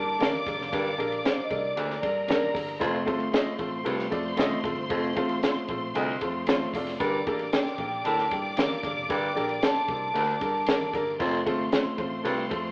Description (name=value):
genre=uptempo 1960s-style soul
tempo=114 BPM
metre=4/4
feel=straight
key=G minor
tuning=A4 = 440 Hz
part: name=vibraphone with soft mallets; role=melody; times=0.0-2.5, 7.5-10.9 s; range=C5 to A5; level=-30 LUFS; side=equal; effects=none
part: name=warm studio string section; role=second line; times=0.0-12.7 s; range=Bb4 to D6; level=-34 LUFS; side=equal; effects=none
part: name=warm upright piano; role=accompaniment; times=0.0-12.7 s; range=A3 to A5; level=-29 LUFS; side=equal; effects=none
part: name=vintage muted picked electric bass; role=bass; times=0.0-12.7 s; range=F1 to G2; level=-41 LUFS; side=equal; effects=tube saturation
part: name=compact cocktail drum kit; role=drums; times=0.2-12.6 s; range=hi-hat, kick drum, ride cymbal, snare drum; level=-30 LUFS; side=equal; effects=none
part: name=congas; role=percussion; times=0.2-12.6 s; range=none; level=-48 LUFS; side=equal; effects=none
part: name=raspy baritone saxophone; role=riff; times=0.7-12.5 s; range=D2 to A2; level=-31 LUFS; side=equal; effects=none
room=wet large studio reverb, RT60 1.3 s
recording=band playing live in one room, AM radio sound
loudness=-24 LUFS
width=side -32 dB against mid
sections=0.0-12.7 A section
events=upright piano fill 6.2-7.0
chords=0.0 Gmadd9; 2.8 F; 7.0 Gmadd9; 11.2 F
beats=0.20 | 0.72 1.25 1.77 2.29 | 2.81 3.33 3.86 4.38 | 4.90 5.43 5.95 6.48 | 7.00 7.53 8.05 8.57 | 9.10 9.62 10.15 10.67 | 11.20 11.72 12.25